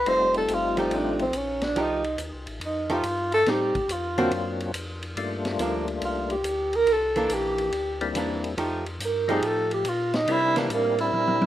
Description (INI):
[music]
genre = soul jazz organ trio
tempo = 141 BPM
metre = 4/4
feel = swing 67% on 8ths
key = F mixolydian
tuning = A4 = 439 Hz
[part]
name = breathy tenor saxophone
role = melody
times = 0.0-11.5 s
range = G3 to C5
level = -24 LUFS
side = right 1 dB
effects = none
[part]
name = tonewheel organ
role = bass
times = 0.0-11.5 s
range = F1 to C3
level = -36 LUFS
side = left 1 dB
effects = slow rotary speaker
[part]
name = percussive tonewheel organ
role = melody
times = 0.1-1.3, 4.2-11.5 s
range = Gb3 to Bb4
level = -28 LUFS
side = left 4 dB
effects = slow rotary speaker, chorus vibrato
[part]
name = vintage drum kit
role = drums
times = 0.1-11.5 s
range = hi-hat, kick drum, ride cymbal, snare drum, toms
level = -35 LUFS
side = left 1 dB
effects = none
[part]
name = archtop guitar, miked and amplified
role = accompaniment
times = 0.8-10.7 s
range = D3 to G4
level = -27 LUFS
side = right 2 dB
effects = none
[sound]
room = small room ambience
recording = rough home demo mix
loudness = -23 LUFS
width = side -12 dB against mid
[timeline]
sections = 0.0-11.5 A section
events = tenor saxophone solo 0.0-11.5; drum fill 11.1-11.5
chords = 0.1 F9; 3.5 Am7b5; 4.3 D7alt; 5.2 Gm7; 6.9 C9; 8.6 F9; 10.3 C9